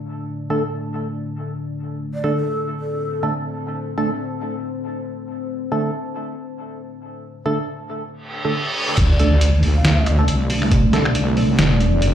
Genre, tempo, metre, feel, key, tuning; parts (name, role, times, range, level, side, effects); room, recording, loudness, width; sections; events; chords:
deep dubstep; 138 BPM; 4/4; swing 56% on 16ths, half-time; A4 = 439 Hz
deep dark ambient pad; sustained chords; 0.0-12.1 s; A3 to D5; -26 LUFS; equal; chorus, built-in reverb
percussive organ stab; stabs; 0.5-11.1 s; D3 to A4; -25 LUFS; right 2 dB; chorus, phaser, dub echo
breathy hollow long shakuhachi; melody; 2.1-3.2, 9.1-10.2 s; A4 to F5; -29 LUFS; left 1 dB; dub echo
reverse cymbal and impact; sound effects; 8.3-10.7 s; -24 LUFS; equal
wobble bass; bass; 9.0-12.1 s; E1 to D2; -17 LUFS; equal; chorus
electronic kick drum; drums; 9.0-10.8 s; -18 LUFS; equal; overdrive, studio reverb
trip hop sampler-style drum kit; drums; 9.0-12.1 s; crash cymbal, finger snaps, hi-hat, snare drum; -21 LUFS; equal; overdrive, studio reverb
light reverb, digital ambience; played on a big sound system in a bare room, stone room reverb; -18 LUFS; side -10 dB against mid
0.0-9.0 A section; 9.0-12.1 B section
filter sweep on ambient pad 0.0-9.0; reverse cymbal 8.3-9.0; drop 9.0-12.1; impact 9.0-10.7
0.0 D5